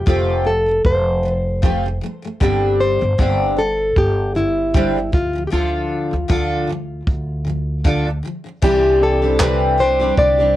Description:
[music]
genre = acoustic pop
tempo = 77 BPM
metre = 4/4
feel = swing 55% on 16ths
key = C major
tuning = A4 = 441 Hz
[part]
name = nylon-string guitar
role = melody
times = 0.0-10.6 s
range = E4 to D5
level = -19 LUFS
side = left 1 dB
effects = cassette tape, tape echo
[part]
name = picked steel-string acoustic guitar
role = accompaniment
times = 0.0-10.6 s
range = G2 to A4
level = -20 LUFS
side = left 1 dB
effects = double-tracked left and right, cassette tape
[part]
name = upright bass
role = bass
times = 0.0-10.6 s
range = F1 to D2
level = -22 LUFS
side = equal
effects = none
[part]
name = compact cocktail drum kit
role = drums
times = 0.1-10.4 s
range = crash cymbal, handclaps, kick drum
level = -18 LUFS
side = equal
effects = cassette tape
[part]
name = bright reed electric piano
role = accompaniment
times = 8.6-10.6 s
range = C4 to D5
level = -28 LUFS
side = left 1 dB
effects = fast tremolo, cassette tape
[part]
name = group handclap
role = percussion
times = 9.4-9.6 s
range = none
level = -26 LUFS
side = right 3 dB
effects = none
[sound]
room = light reverb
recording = home recording on cassette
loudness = -15 LUFS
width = side -14 dB against mid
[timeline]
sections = 0.0-8.6 A section; 8.6-10.6 B section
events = none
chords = 0.0 Fadd9; 2.4 Gsus4; 5.1 Dm; 8.6 Cadd9

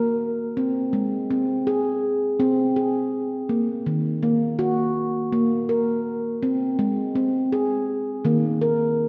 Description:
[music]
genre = world meditative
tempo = 82 BPM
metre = 4/4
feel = swing 53% on 16ths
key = Eb dorian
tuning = A4 = 440 Hz
[part]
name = handpan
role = solo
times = 0.0-9.1 s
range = Eb3 to Bb4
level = -23 LUFS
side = equal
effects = none
[sound]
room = wet lush hall reverb, RT60 2.5 s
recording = dreamy mix soaked in reverb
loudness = -23 LUFS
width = mono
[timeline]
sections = 0.0-9.1 A section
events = none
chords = 0.0 Eb5; 0.9 Ab; 3.9 Ebm; 6.8 Ab; 8.3 Eb5

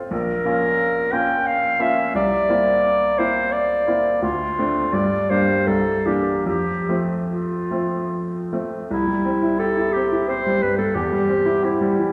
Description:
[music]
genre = classical, romantic duo for clarinet and grand piano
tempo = 72-90 BPM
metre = 3/4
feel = rubato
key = F major, C major from 8.9 s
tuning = A4 = 442 Hz
[part]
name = bright baby grand piano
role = accompaniment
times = 0.0-12.1 s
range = A1 to G4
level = -24 LUFS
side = equal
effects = none
[part]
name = clear clarinet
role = melody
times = 0.1-12.1 s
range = E4 to G5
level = -23 LUFS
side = equal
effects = none
[sound]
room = wet concert hall reverb, RT60 1.7 s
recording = heard from further back in the room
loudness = -21 LUFS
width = mono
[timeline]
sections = 0.0-8.9 A section; 8.9-12.1 B section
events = none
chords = 0.1 Bbm; 2.1 C9; 4.2 Dm7; 4.9 Gm; 5.7 C9; 6.5 F; 8.9 C; 11.0 C/E

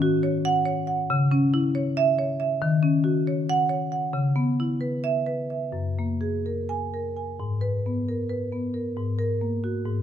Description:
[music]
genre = classical, contemporary piece for solo marimba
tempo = 270 BPM (eighths)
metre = 7/8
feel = rubato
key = G# minor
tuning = A4 = 440 Hz
[part]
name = marimba with medium mallets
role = solo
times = 0.0-10.0 s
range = F#2 to G#5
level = -23 LUFS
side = equal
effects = none
[sound]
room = light reverb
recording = close, detailed microphones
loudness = -23 LUFS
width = side -9 dB against mid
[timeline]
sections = 0.0-7.4 A section; 7.4-10.0 B section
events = none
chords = 0.0 D#m7; 1.1 C#m; 2.6 D#m7; 4.1 C#m7; 5.7 F#add9; 7.4 G#madd9; 9.0 F#add9/G#

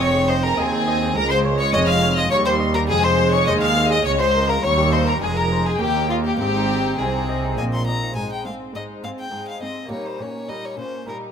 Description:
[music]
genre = classical, baroque-style concerto movement with solo episodes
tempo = 103 BPM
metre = 3/4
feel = straight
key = Ab major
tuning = A4 = 440 Hz
[part]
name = dark chamber violin section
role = melody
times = 0.0-11.3 s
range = G4 to F6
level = -25 LUFS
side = left 2 dB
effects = none
[part]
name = rich violin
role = melody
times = 0.0-11.2 s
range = F4 to C6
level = -25 LUFS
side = left 3 dB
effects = none
[part]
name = rich chamber violin section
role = second line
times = 0.0-11.3 s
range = C4 to F5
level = -27 LUFS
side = left 3 dB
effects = none
[part]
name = dark chamber viola section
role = accompaniment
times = 0.0-11.3 s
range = G3 to C4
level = -26 LUFS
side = right 3 dB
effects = none
[part]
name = lute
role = accompaniment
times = 0.0-11.3 s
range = Eb2 to Eb5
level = -30 LUFS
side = equal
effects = none
[part]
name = dark chamber cello section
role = bass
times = 0.0-11.1 s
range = Db2 to C3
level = -26 LUFS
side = right 1 dB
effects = none
[part]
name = rich chamber double bass section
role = bass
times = 0.0-8.2 s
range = F1 to Eb2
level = -25 LUFS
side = right 2 dB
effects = none
[sound]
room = moderate recital hall reverb, RT60 1.3 s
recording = close, detailed microphones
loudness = -17 LUFS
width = side -7 dB against mid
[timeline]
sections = 0.0-8.2 A section; 8.2-11.3 B section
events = none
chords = 0.0 Ab; 1.1 Bbm11; 2.3 Eb; 2.9 Fm; 4.1 Bbm7/Db; 4.6 Eb7; 5.2 Fm; 5.8 Eb; 6.4 Ab; 9.9 Eb7/Bb

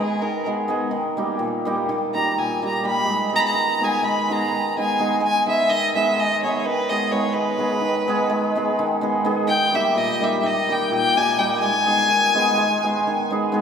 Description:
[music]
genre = balkan folk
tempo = 253 BPM (eighths)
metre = 9/8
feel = straight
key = G# harmonic minor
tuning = A4 = 440 Hz
[part]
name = clear fiddle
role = melody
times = 0.0-13.3 s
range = G#4 to B5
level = -21 LUFS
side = left 1 dB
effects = none
[part]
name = hammered dulcimer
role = accompaniment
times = 0.0-13.6 s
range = A#2 to G#4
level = -22 LUFS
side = right 1 dB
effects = none
[sound]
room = wet cathedral reverb, RT60 4.7 s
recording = recorded in a church or concert hall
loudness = -18 LUFS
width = side -7 dB against mid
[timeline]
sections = 0.0-5.2 A section; 5.2-13.6 B section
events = fiddle solo 0.0-5.2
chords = 0.0 G#m; 0.9 D#; 3.0 G#m; 9.5 D#; 11.6 G#m

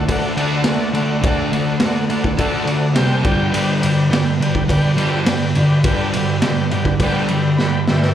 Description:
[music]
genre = garage rock duo or trio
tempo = 104 BPM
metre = 4/4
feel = straight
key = unclear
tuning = A4 = 440 Hz
[part]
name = combo organ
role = sustained chords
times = 0.0-8.1 s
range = G4 to B5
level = -24 LUFS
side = left 1 dB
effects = none
[part]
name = fuzz guitar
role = riff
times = 0.0-8.1 s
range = G2 to D4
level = -17 LUFS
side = equal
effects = distortion
[part]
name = raw garage drum kit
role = drums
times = 0.1-8.1 s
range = kick drum, ride cymbal, snare drum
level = -20 LUFS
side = equal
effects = none
[sound]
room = moderate club reverb, RT60 0.5 s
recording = live gig heard through the venue's PA, club reverb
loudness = -15 LUFS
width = side -10 dB against mid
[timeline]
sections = 0.0-8.1 A section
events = transistor combo organ fill 7.3-8.1; drum fill 7.6-8.1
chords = 0.0 D; 3.0 C5; 3.2 G5; 3.5 G

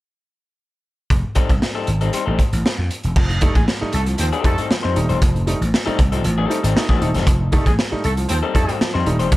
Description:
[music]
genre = funk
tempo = 117 BPM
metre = 4/4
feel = straight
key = F mixolydian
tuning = A4 = 442 Hz
[part]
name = vintage slap bass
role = bass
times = 1.1-9.4 s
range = Eb1 to F2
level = -20 LUFS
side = equal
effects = none
[part]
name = raw garage drum kit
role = drums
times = 1.1-9.4 s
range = crash cymbal, hi-hat, kick drum, snare drum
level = -19 LUFS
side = equal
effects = none
[part]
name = electric guitar through a small old amp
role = accompaniment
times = 1.4-9.3 s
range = G3 to C5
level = -24 LUFS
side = left 6 dB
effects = spring reverb
[part]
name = bright upright piano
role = stabs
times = 3.2-9.4 s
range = F3 to Eb4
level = -26 LUFS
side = right 1 dB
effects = plate reverb
[part]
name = mellow horn section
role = second line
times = 3.4-8.7 s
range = Ab3 to C5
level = -27 LUFS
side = equal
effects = slapback echo, plate reverb
[sound]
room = little or no reverb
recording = none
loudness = -16 LUFS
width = side -18 dB against mid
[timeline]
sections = 1.1-3.2 A section; 3.2-9.4 B section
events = none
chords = 1.1 F9 (rootless); 3.2 F9

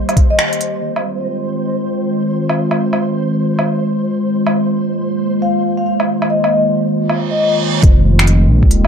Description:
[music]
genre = future garage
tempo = 137 BPM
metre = 4/4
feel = swing 63% on 16ths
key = F minor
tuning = A4 = 441 Hz
[part]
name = warbly tape-like pad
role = sustained chords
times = 0.0-8.9 s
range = Eb3 to G4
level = -17 LUFS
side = equal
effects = chorus, built-in reverb, vintage 12-bit sampler grit, sidechain pumping
[part]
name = flickering grainy texture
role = texture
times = 0.0-7.8 s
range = C5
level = -27 LUFS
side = right 3 dB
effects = built-in reverb
[part]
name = organic electronic drum kit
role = drums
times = 0.1-8.9 s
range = finger snaps, hi-hat, woodblock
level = -18 LUFS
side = right 1 dB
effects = overdrive
[part]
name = electronic kick drum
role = drums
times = 0.2-0.3, 7.8-8.7 s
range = none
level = -10 LUFS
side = equal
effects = none
[part]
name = vibraphone with medium mallets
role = melody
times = 0.3-0.5, 5.4-7.5 s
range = Eb5 to F5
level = -19 LUFS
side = left 2 dB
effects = vintage 12-bit sampler grit, tape echo
[part]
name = reverse cymbal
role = sound effects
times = 7.1-7.8 s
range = none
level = -22 LUFS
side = right 7 dB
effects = none
[part]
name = swelling detuned saw bass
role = bass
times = 7.8-8.9 s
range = Eb1 to Bb1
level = -12 LUFS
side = equal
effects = none
[sound]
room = moderate digital room reverb, RT60 1.1 s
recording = dark, warm production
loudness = -13 LUFS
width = side -7 dB against mid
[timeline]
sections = 0.8-7.8 A section; 7.8-8.9 B section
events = break 0.4-0.8; band accent 0.4; reverse cymbal 7.1-7.8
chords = 0.0 Eb; 0.8 Fm7

